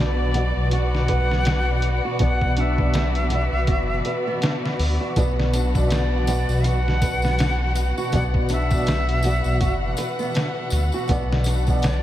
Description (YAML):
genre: trip hop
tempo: 81 BPM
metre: 4/4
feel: swing 58% on 16ths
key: B minor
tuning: A4 = 441 Hz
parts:
  - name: jazz flute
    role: melody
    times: 0.0-12.0 s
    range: D5 to F#5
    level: -28 LUFS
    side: left 1 dB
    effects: tape echo
  - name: felt-muted upright piano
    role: accompaniment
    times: 0.0-12.0 s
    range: B2 to D5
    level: -26 LUFS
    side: equal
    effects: tremolo, tape echo
  - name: muted symphonic violin section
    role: sustained chords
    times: 0.0-12.0 s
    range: B3 to F#5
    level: -30 LUFS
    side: left 1 dB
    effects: none
  - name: nylon-string guitar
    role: arpeggios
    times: 0.0-12.0 s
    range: B3 to B4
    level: -31 LUFS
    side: right 1 dB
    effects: vintage 12-bit sampler grit, ping-pong delay
  - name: dark detuned saw bass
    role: bass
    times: 0.0-12.0 s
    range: F#1 to D2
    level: -22 LUFS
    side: equal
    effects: tube saturation
  - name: trip hop sampler-style drum kit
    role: drums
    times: 0.3-12.0 s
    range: hi-hat, kick drum, snare drum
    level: -25 LUFS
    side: equal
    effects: none
  - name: tambourine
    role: percussion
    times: 5.2-12.0 s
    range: none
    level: -39 LUFS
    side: left 5 dB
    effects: none
room: moderate plate reverb, RT60 3.5 s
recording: dreamy mix soaked in reverb, vinyl crackle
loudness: -19 LUFS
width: side -13 dB against mid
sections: 0.0-12.0 A section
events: none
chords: 0.0 Bm